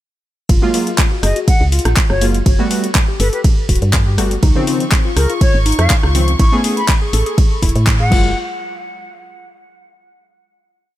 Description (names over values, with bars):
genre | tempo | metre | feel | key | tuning
deep house | 122 BPM | 4/4 | straight | unclear | A4 = 439 Hz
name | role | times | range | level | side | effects
warbly dusty pluck | arpeggios | 0.5-8.3 s | Eb4 to A4 | -25 LUFS | left 2 dB | chorus, sidechain pumping, tape echo
woody FM bass | bass | 0.5-8.3 s | D1 to A2 | -15 LUFS | equal | sidechain pumping
deep house drum kit | drums | 0.5-8.2 s | crash cymbal, handclaps, hi-hat, ride cymbal, rim click | -21 LUFS | equal | none
electronic kick drum | drums | 0.5-8.2 s | none | -14 LUFS | equal | none
warm analog keys | stabs | 0.6-8.3 s | Db3 to G#4 | -20 LUFS | equal | chorus, sidechain pumping, ping-pong delay
silver concert flute | melody | 1.2-8.4 s | Bb4 to C#6 | -23 LUFS | left 2 dB | vintage 12-bit sampler grit, tape echo
clear studio violin section | texture | 4.4-8.4 s | Db6 | -27 LUFS | left 1 dB | none
room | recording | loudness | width
little or no reverb | none | -12 LUFS | side -14 dB against mid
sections
0.5-8.4 drop; 8.4-10.3 final hit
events
drop 0.5-8.4; band accent 7.9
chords
0.5 Gbmaj9; 2.5 Gmaj9; 4.4 Dbmaj9; 6.4 Amaj9; 8.1 Gbmaj9; 8.4 N.C.